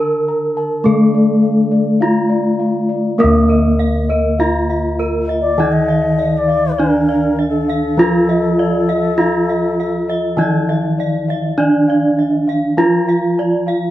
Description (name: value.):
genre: Javanese gamelan.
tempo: 50 BPM.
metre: 4/4.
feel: straight.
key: D pelog.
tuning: A4 = 442 Hz.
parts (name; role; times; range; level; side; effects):
gamelan-type bronze metallophone; melody; 0.0-13.9 s; Bb3-20c to Bb4-20c; -17 LUFS; right 1 dB; none.
gamelan-type bronze metallophone; accompaniment; 0.0-13.9 s; D3 to Bb3-20c; -18 LUFS; equal; none.
gamelan-type bossed gongs; arpeggios; 0.0-13.9 s; D5 to Bb5-20c; -24 LUFS; left 4 dB; none.
gamelan-type bossed gongs; bass; 0.0-13.9 s; D2 to Bb4-20c; -22 LUFS; equal; none.
gamelan-type bronze metallophone; arpeggios; 3.2-13.9 s; Bb4-20c to F5-30c; -26 LUFS; right 4 dB; none.
mellow bansuri; second line; 5.4-10.7 s; A4-33c to Eb5+20c; -20 LUFS; left 4 dB; none.
room: wet studio reverb, RT60 0.5 s.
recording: band playing live in one room.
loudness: -13 LUFS.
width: side -14 dB against mid.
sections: 0.0-3.2 A section; 3.2-13.9 B section.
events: none.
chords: none.